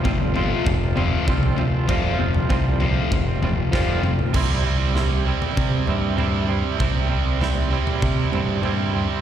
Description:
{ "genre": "quiet-loud alternative rock", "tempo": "98 BPM", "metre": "4/4", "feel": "straight", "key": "unclear", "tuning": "A4 = 440 Hz", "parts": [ { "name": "twangy electric guitar", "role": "arpeggios", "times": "0.0-9.2 s", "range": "C3 to F4", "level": "-27 LUFS", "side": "right 6 dB", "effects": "tremolo, slapback echo" }, { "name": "thick fuzz guitar", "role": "riff", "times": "0.0-4.3 s", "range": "F2 to F3", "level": "-23 LUFS", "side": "left 4 dB", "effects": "distortion" }, { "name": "growling picked electric bass", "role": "bass", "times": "0.0-9.1 s", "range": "F1 to C3", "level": "-23 LUFS", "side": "equal", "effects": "overdrive" }, { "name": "big rock drum kit", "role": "drums", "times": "0.1-8.8 s", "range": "crash cymbal, kick drum, snare drum, toms", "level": "-25 LUFS", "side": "equal", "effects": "none" }, { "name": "distorted electric guitar", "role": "riff", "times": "4.3-9.2 s", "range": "C3 to C4", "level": "-26 LUFS", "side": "right 11 dB", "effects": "overdrive, slapback echo" } ], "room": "light reverb, small room ambience", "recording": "live gig heard through the venue's PA, recital hall reverb", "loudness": "-19 LUFS", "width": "side -10 dB against mid", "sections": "0.0-4.3 A section; 4.3-9.2 B section", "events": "drum fill 3.7-4.3", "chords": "0.0 Fsus2; 4.3 C", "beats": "0.05 0.66 1.27 | 1.89 2.50 3.11 3.73 | 4.34 4.95 5.57 6.18 | 6.79 7.41 8.02 8.64" }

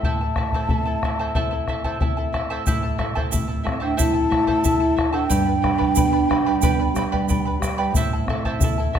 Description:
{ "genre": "andean folk, Andean ensemble", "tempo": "91 BPM", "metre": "4/4", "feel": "straight", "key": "A minor", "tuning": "A4 = 439 Hz", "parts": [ { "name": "breathy mellow large quena", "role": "melody", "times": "0.0-9.0 s", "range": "E5 to A5", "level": "-26 LUFS", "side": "left 1 dB", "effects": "tape echo" }, { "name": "charango", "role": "accompaniment", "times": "0.0-9.0 s", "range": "E4 to B5", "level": "-28 LUFS", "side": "right 3 dB", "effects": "none" }, { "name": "nylon-string guitar", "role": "accompaniment", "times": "0.0-9.0 s", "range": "G2 to E4", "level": "-27 LUFS", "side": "left 1 dB", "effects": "none" }, { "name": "bombo", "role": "percussion", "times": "0.0-9.0 s", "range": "none", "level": "-23 LUFS", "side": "left 1 dB", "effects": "none" }, { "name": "egg shaker", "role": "percussion", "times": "2.7-8.8 s", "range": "none", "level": "-32 LUFS", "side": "right 9 dB", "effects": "none" }, { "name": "breathy mellow large pan pipes", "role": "second line", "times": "3.7-9.0 s", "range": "C4 to E4", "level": "-22 LUFS", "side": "right 2 dB", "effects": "none" } ], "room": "wet recital hall reverb, RT60 1.4 s", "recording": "none", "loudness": "-19 LUFS", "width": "side -8 dB against mid", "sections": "0.0-2.7 A section; 2.7-9.0 A section", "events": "none", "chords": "0.0 Am; 5.3 G; 7.9 Am", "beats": "| 0.03 0.69 1.35 2.01 | 2.67 3.33 3.99 4.65 | 5.31 5.97 6.63 7.29 | 7.95 8.61" }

